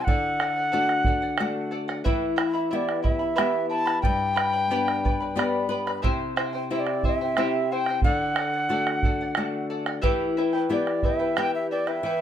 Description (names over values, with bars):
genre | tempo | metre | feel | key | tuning
andean folk, Andean ensemble | 90 BPM | 3/4 | straight | E minor | A4 = 440 Hz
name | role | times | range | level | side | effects
bright reedy bansuri | melody | 0.0-12.2 s | D5 to A5 | -26 LUFS | equal | plate reverb
charango | accompaniment | 0.0-12.2 s | E4 to B5 | -29 LUFS | equal | none
flamenco guitar | accompaniment | 0.0-12.2 s | G2 to D5 | -28 LUFS | left 4 dB | none
bombo | percussion | 0.1-12.0 s | none | -26 LUFS | right 2 dB | none
room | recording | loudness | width
light reverb | close, detailed microphones | -22 LUFS | side -10 dB against mid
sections
0.0-12.2 A section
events
nylon-string guitar fill 5.0-6.0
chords
0.1 D; 2.1 Em; 4.0 G; 6.0 C; 8.0 D; 10.0 Em